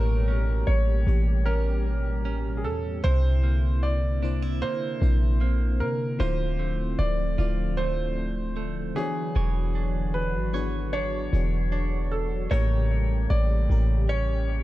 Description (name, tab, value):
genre	contemporary R&B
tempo	76 BPM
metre	4/4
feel	straight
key	unclear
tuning	A4 = 440 Hz
part	warm concert grand piano	melody	0.0-14.6 s	G#4 to D5	-32 LUFS	right 1 dB	analog delay
part	FM electric piano	accompaniment	0.0-14.6 s	A2 to D5	-34 LUFS	left 5 dB	chorus, analog delay
part	warm analog pad	sustained chords	0.0-14.6 s	B2 to C#5	-36 LUFS	left 1 dB	chorus
part	direct-recorded clean electric guitar	arpeggios	0.0-14.6 s	C3 to C#5	-35 LUFS	right 6 dB	spring reverb, analog delay
part	warm 808-style bass	bass	0.0-14.6 s	D1 to C3	-24 LUFS	equal	none
room	digital ambience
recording	echo-heavy mix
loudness	-23 LUFS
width	side -16 dB against mid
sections	0.0-14.6 A section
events	none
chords	0.0 A7b9; 3.0 C9; 6.2 Dm7; 9.0 E13; 12.5 A7b9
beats	0.67 1.46 2.25 | 3.04 3.83 4.62 5.41 | 6.20 6.99 7.78 8.57 | 9.36 10.14 10.94 11.72 | 12.51 13.30 14.09